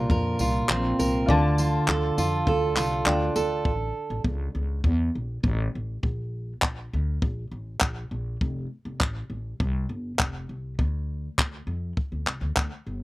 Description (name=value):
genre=acoustic pop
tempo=101 BPM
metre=4/4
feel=straight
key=unclear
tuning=A4 = 440 Hz
part: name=picked steel-string acoustic guitar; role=accompaniment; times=0.0-4.2 s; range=Bb2 to Bb4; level=-24 LUFS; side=right 2 dB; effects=none
part: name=warm upright piano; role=accompaniment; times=0.0-3.7 s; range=D4 to Bb5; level=-32 LUFS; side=left 3 dB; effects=none
part: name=upright bass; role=bass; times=0.0-13.0 s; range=F1 to F2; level=-29 LUFS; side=equal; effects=none
part: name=compact cocktail drum kit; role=drums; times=0.1-12.7 s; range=handclaps, kick drum, tambourine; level=-25 LUFS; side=equal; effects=none
room=little or no reverb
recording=recorded outdoors, with no room sound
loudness=-24 LUFS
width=side -18 dB against mid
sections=0.0-3.7 A section; 3.7-13.0 B section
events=none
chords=0.0 Bbadd9; 1.3 Dm; 3.7 A; 6.0 N.C.; 8.4 F; 10.8 N.C.